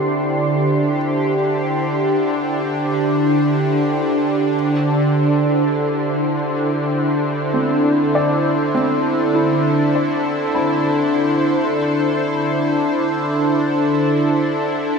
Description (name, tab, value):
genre	ambient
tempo	50 BPM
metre	3/4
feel	straight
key	unclear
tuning	A4 = 439 Hz
part	warm analog pad	sustained chords	0.0-15.0 s	D3 to C5	-17 LUFS	equal	chorus, shimmer reverb
part	felt-muted upright piano	arpeggios	0.0-15.0 s	C4 to B5	-24 LUFS	left 1 dB	ping-pong delay, shimmer reverb
part	bowed-like drone	drone	0.0-15.0 s	D3 to D4	-23 LUFS	right 2 dB	built-in reverb
part	wind-like tuned noise texture	texture	0.0-15.0 s	C5 to C6	-30 LUFS	equal	built-in reverb, shimmer reverb
room	wet lush hall reverb, RT60 3.0 s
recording	none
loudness	-16 LUFS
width	side -5 dB against mid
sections	0.0-15.0 A section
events	fade-out on synth texture 0.0-15.0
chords	0.0 D7sus2; 4.5 Am/D